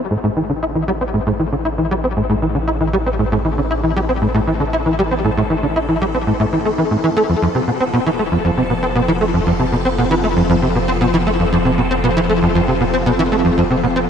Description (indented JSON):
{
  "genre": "ambient, sequencer-driven space music",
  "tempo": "117 BPM",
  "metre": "4/4",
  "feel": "straight",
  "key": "A minor",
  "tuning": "A4 = 436 Hz",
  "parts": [
    { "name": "phased string machine", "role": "sustained chords", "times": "0.0-14.1 s", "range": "E3 to A4", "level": "-22 LUFS", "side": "equal", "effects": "ensemble chorus, phaser" },
    { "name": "round analog bass", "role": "bass", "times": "0.0-14.1 s", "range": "F1 to A1", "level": "-25 LUFS", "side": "equal", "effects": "none" },
    { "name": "tight sequencer bass", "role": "riff", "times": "0.1-14.0 s", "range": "F2 to E4", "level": "-16 LUFS", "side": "equal", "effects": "ensemble chorus, ping-pong delay" }
  ],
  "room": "moderate huge ambient reverb, RT60 8.4 s",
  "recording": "dark, warm production",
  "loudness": "-14 LUFS",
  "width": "side -7 dB against mid",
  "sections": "0.0-14.1 A section",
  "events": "fade-in on string machine 0.0-14.1",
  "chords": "0.0 Am; 7.3 F"
}